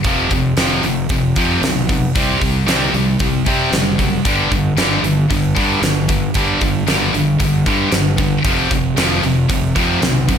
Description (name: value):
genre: hard rock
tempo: 114 BPM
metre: 4/4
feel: straight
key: unclear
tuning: A4 = 439 Hz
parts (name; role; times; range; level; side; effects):
- heavy high-gain guitar; riff; 0.0-10.4 s; F2 to C4; -19 LUFS; right 9 dB; distortion
- high-gain distorted guitar; riff; 0.0-10.4 s; F2 to C4; -18 LUFS; left 9 dB; distortion
- fuzz fingered electric bass; bass; 0.0-10.4 s; F1 to C3; -21 LUFS; equal; overdrive
- huge arena drum kit; drums; 0.0-10.4 s; hi-hat, kick drum, snare drum; -19 LUFS; equal; none
room: small room ambience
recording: none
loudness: -13 LUFS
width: side -8 dB against mid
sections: 0.0-10.4 A section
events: none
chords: 0.1 F5; 2.2 C5; 4.3 G5; 8.5 F5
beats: | 0.05 0.58 1.10 1.63 | 2.15 2.68 3.20 3.73 | 4.25 4.78 5.30 5.83 | 6.35 6.88 7.41 7.93 | 8.46 8.98 9.51 10.03